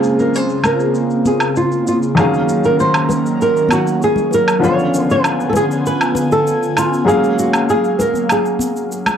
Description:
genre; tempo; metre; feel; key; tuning
sunset chillout; 98 BPM; 4/4; straight; Bb minor; A4 = 440 Hz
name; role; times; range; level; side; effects
flamenco guitar; melody; 0.0-8.9 s; F4 to Db5; -17 LUFS; right 1 dB; analog delay
warm baby grand piano; accompaniment; 0.0-9.2 s; Db3 to F5; -19 LUFS; left 1 dB; auto-pan, analog delay
airy breathy pad; sustained chords; 0.0-9.2 s; Db3 to Ab5; -19 LUFS; right 1 dB; chorus, phaser
shaker and woodblock; drums; 0.0-9.2 s; none; -20 LUFS; equal; overdrive, low-pass filter on perc, low-pass filter on room
congas and bongos; percussion; 0.6-9.2 s; none; -22 LUFS; left 2 dB; none
room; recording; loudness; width
light reverb, small room reverb; dry, gritty hardware recording, cassette tape; -13 LUFS; side -8 dB against mid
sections
0.0-9.2 A section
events
none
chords
0.0 Bbm9; 2.2 Ebm7; 4.6 Db7b9; 7.1 Gbmaj9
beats
0.34 0.95 1.56 | 2.17 2.79 3.40 4.01 | 4.62 5.24 5.85 6.46 | 7.07 7.68 8.30 8.91

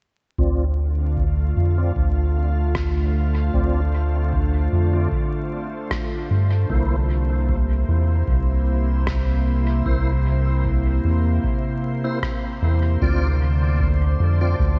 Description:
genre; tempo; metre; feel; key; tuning
ambient dub; 76 BPM; 4/4; straight; D minor; A4 = 440 Hz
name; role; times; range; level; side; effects
soft additive organ-like pad; sustained chords; 0.9-14.8 s; C3 to C5; -29 LUFS; equal; ensemble chorus, built-in reverb
tonewheel organ; stabs; 0.4-14.6 s; Bb3 to D5; -34 LUFS; equal; overdrive, chorus vibrato, slow rotary speaker, low-pass filter, dub echo
round analog bass; bass; 0.4-14.8 s; C2 to G2; -22 LUFS; equal; none
electronic kick drum; drums; 0.4-14.8 s; none; -28 LUFS; equal; none
electronic rim click; drums; 2.7-12.4 s; none; -37 LUFS; equal; dub echo
drifting glass-harmonics texture; texture; 13.7-14.8 s; D5; -37 LUFS; equal; chorus, built-in reverb
room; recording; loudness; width
light reverb; vinyl crackle, nothing above 8.0 kHz; -21 LUFS; mono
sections
0.4-14.8 A section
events
filter sweep on tonewheel organ 0.4-14.8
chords
0.4 Dm7; 6.7 C7; 13.0 Dm7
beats
| 0.39 1.18 1.97 2.75 | 3.54 4.33 5.12 5.91 | 6.70 7.49 8.28 9.07 | 9.86 10.65 11.44 12.23 | 13.02 13.81 14.60

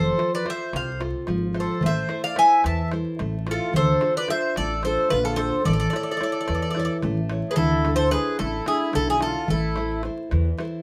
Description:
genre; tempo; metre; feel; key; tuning
greek folk, Greek bouzouki band; 219 BPM (eighths); 7/8; straight; D dorian sharp4; A4 = 440 Hz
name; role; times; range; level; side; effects
Greek bouzouki; melody; 0.0-10.0 s; G#4 to A5; -26 LUFS; equal; none
accordion; second line; 0.0-10.0 s; E4 to E5; -31 LUFS; equal; none
nylon-string guitar; accompaniment; 0.0-10.8 s; C3 to C#5; -31 LUFS; equal; none
upright bass; bass; 0.0-10.5 s; F1 to E2; -29 LUFS; equal; none
darbuka; percussion; 0.2-10.7 s; none; -30 LUFS; equal; none
room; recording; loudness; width
moderate studio reverb, RT60 0.6 s; vinyl crackle; -23 LUFS; mono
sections
0.0-7.6 A section; 7.6-10.8 B section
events
none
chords
0.0 F; 1.8 Am; 3.7 Dm; 5.7 A; 7.6 Dsus2; 9.5 Am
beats
0.20 0.47 0.74 1.01 1.29 1.56 | 1.83 2.10 2.38 2.65 2.92 3.19 3.47 | 3.74 4.01 4.29 4.56 4.83 5.11 5.38 | 5.66 5.93 6.20 6.48 6.75 7.03 7.30 | 7.57 7.85 8.12 8.40 8.67 8.95 9.22 | 9.49 9.77 10.04 10.32 10.59

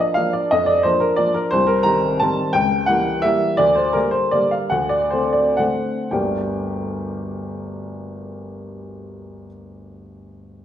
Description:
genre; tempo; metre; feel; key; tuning
classical, piano waltz; 107-187 BPM; 3/4; rubato; G minor; A4 = 441 Hz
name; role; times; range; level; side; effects
warm upright piano; solo; 0.0-10.6 s; G1 to Bb5; -18 LUFS; equal; none
room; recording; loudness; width
wet recital hall reverb, RT60 1.4 s; minimal, uncompressed stereo recording; -16 LUFS; side -10 dB against mid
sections
0.0-6.1 A section; 6.1-9.1 B section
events
slowing down 3.1-6.1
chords
0.0 Bb; 1.5 Cm; 2.5 C#dim7; 3.6 Gm/D; 4.7 D7; 6.1 Gm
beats
0.16 | 0.51 0.84 1.19 | 1.53 1.86 2.21 | 2.55 2.88 3.23 | 3.59 3.95 4.34 | 4.73 5.13 5.60 | 6.13 6.61 7.13 | 7.64 8.12 8.61

